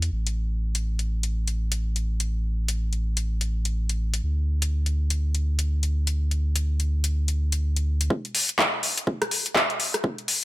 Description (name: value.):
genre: deep house.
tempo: 124 BPM.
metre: 4/4.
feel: swing 60% on 16ths.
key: unclear.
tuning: A4 = 440 Hz.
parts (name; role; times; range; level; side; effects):
warm sub bass; bass; 0.0-8.1 s; A1 to E2; -24 LUFS; equal; tube saturation, sidechain pumping.
deep house drum kit; drums; 0.0-10.4 s; handclaps, hi-hat, rim click; -24 LUFS; left 1 dB; overdrive, high-pass filter on cymbals, high-pass filter on hats, high-pass filter on snare.
electronic kick drum; drums; 8.1-10.2 s; none; -28 LUFS; equal; overdrive, high-pass filter on kick.
room: digital ambience.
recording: none.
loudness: -23 LUFS.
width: side -16 dB against mid.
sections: 0.0-8.1 A section; 8.1-10.4 B section.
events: build-up 8.1-10.4.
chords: none.